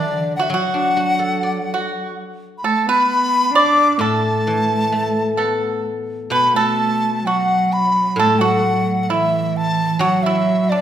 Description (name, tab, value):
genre	chinese traditional, Chinese chamber ensemble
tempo	66 BPM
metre	2/4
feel	rubato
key	unclear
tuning	A4 = 440 Hz
part	mellow large dizi	melody	0.0-10.8 s	D5 to D6	-18 LUFS	left 2 dB	none
part	dark cello	second line	0.0-10.8 s	D3 to D4	-22 LUFS	right 4 dB	none
part	pipa	second line	0.0-10.8 s	D4 to D5	-21 LUFS	right 3 dB	none
part	guzheng	accompaniment	0.0-10.8 s	A2 to D5	-24 LUFS	left 2 dB	none
room	wet recital hall reverb, RT60 1.6 s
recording	recorded in a church or concert hall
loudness	-15 LUFS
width	side -10 dB against mid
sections	0.0-10.8 A section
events	none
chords	none